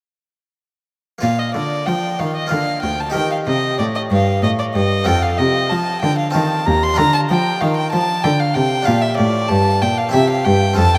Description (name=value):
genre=classical, baroque-style sonata movement with continuo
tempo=94 BPM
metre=3/4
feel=straight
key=Bb major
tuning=A4 = 440 Hz
part: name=warm violin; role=melody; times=1.2-11.0 s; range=D5 to C6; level=-21 LUFS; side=equal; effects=none
part: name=harpsichord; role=accompaniment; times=1.2-11.0 s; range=D2 to C5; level=-24 LUFS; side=equal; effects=none
part: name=warm cello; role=bass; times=1.2-11.0 s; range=D2 to F3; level=-21 LUFS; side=equal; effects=none
room=wet cathedral reverb, RT60 5.2 s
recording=in a vast, echoing space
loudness=-17 LUFS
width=mono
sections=1.2-11.0 A section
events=none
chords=1.2 Bb; 2.5 Bb/D; 3.2 Eb; 5.1 F; 6.4 F7/Eb; 7.0 Bb/D; 8.9 Gm7; 10.1 C